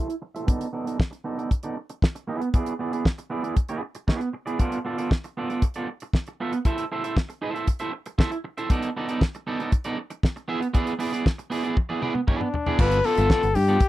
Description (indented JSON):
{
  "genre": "disco",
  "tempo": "117 BPM",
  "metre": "4/4",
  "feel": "straight",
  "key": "unclear",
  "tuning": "A4 = 441 Hz",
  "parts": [
    { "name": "electric guitar at the edge of break-up", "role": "accompaniment", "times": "0.0-13.8 s", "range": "B3 to E5", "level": "-27 LUFS", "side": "right 3 dB", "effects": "low-pass filter" },
    { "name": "damped 70s drum kit", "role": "drums", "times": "0.1-13.9 s", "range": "crash cymbal, hi-hat, kick drum, snare drum, toms", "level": "-22 LUFS", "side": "equal", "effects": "none" },
    { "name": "breathy flugelhorn", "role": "melody", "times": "12.3-13.9 s", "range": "D4 to B4", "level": "-23 LUFS", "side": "left 4 dB", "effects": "none" },
    { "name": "fingered electric bass", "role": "bass", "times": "12.8-13.8 s", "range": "G1 to G2", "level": "-22 LUFS", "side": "equal", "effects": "none" }
  ],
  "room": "little or no reverb",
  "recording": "dry, close 1970s-style studio recording",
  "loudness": "-23 LUFS",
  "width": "side -15 dB against mid",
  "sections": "0.0-12.8 A section; 12.8-13.9 B section",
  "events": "filter sweep on clean electric guitar 0.0-12.8; drum fill 11.8-12.8",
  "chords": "0.5 B7#9; 2.3 E7; 4.6 Bm7b5; 6.6 Am/E; 8.7 B7#9; 10.5 E7; 12.8 G9"
}